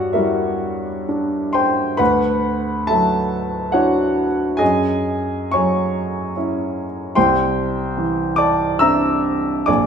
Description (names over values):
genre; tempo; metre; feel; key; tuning
classical, impressionist solo piano; 70 BPM; 3/4; uneven beats, rubato; unclear; A4 = 438 Hz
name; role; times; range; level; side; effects
clear baby grand piano; solo; 0.0-9.9 s; Bb1 to E6; -16 LUFS; equal; none
room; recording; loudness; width
wet recital hall reverb, RT60 1.5 s; minimal, uncompressed stereo recording; -16 LUFS; side -7 dB against mid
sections
0.0-9.9 A section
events
none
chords
0.0 Gm6; 2.0 D69; 4.6 F#sus2; 7.2 C9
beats
0.13 1.07 | 2.00 2.89 3.74 | 4.60 5.53 6.35 | 7.16 7.96 8.80 | 9.67